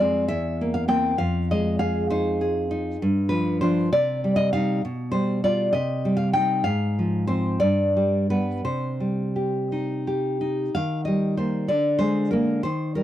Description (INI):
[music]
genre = romantic piece for solo classical guitar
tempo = 57-68 BPM (dotted quarters)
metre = 6/8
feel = rubato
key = C minor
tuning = A4 = 440 Hz
[part]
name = nylon-string guitar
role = solo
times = 0.0-13.0 s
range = E2 to G5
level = -21 LUFS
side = equal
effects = none
[sound]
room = small room ambience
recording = dry, close 1970s-style studio recording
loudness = -21 LUFS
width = side -12 dB against mid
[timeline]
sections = 0.0-10.7 A section; 10.7-13.0 B section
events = none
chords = 0.3 C7/E; 1.2 Fm7; 3.0 G5; 3.9 Cm; 4.8 G7/B; 5.7 Cm; 6.7 Fm/Ab; 7.6 G; 8.7 Cm; 10.7 Eb; 11.7 Bb7/D